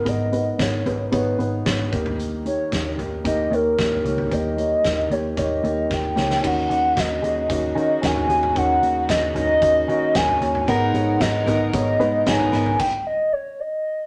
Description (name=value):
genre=piano-driven pop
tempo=113 BPM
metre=4/4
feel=straight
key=unclear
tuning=A4 = 439 Hz
part: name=hollow clarinet-like synth lead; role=melody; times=0.0-14.1 s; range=A#4 to G#5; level=-24 LUFS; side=equal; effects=chorus
part: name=felt-muted upright piano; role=accompaniment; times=0.0-12.8 s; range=G#2 to C#5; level=-26 LUFS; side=equal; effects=none
part: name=vintage muted picked electric bass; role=bass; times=0.1-12.7 s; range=G#1 to D#3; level=-30 LUFS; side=equal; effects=none
part: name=huge arena drum kit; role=drums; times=0.1-12.9 s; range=crash cymbal, hi-hat, kick drum, snare drum, toms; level=-30 LUFS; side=equal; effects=none
part: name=warm studio string section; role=sustained chords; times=6.4-12.8 s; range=B2 to A#4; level=-38 LUFS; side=equal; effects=none
part: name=picked plugged-in steel-string acoustic guitar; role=riff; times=10.7-12.8 s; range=G#3 to A#4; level=-28 LUFS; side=equal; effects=none
room=moderate studio reverb, RT60 0.8 s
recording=none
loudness=-21 LUFS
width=mono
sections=0.0-6.4 A section; 6.4-14.1 B section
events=drum fill 5.9-6.4; stop 12.8-14.1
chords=0.0 G#madd9; 1.9 D#; 6.4 D#m7; 10.7 G#madd9; 12.8 N.C.